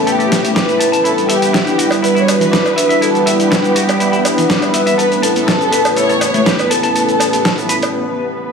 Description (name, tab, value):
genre	nu-disco, nu disco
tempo	122 BPM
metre	4/4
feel	straight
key	E dorian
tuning	A4 = 440 Hz
part	dark symphonic violin section	melody	0.0-7.9 s	G4 to C#5	-17 LUFS	equal	tape echo
part	warm analog pad	accompaniment	0.0-7.9 s	G3 to F#5	-16 LUFS	right 1 dB	chorus, tape echo
part	muted chamber string section	sustained chords	0.0-8.5 s	B3 to B4	-21 LUFS	left 1 dB	low-pass filter
part	clean electric guitar	riff	0.1-7.8 s	E3 to A5	-21 LUFS	left 3 dB	wide subtle chorus, low-pass filter, tape echo
part	dusty soul sampler-style drum kit	drums	0.1-7.9 s	hi-hat, shaker, snare drum	-18 LUFS	equal	studio reverb
part	cowbell	percussion	1.9-7.9 s	none	-22 LUFS	right 2 dB	none
room	moderate plate reverb, RT60 2.2 s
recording	heavily compressed radio sound, studio reverb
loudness	-11 LUFS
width	side -5 dB against mid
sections	0.0-8.5 A section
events	break 7.9-8.5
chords	0.0 A9; 1.1 Em7; 5.0 A9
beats	0.07 0.56 | 1.05 1.55 2.04 2.53 | 3.02 3.51 4.00 4.50 | 4.99 5.48 5.97 6.46 | 6.96 7.45 7.94 8.43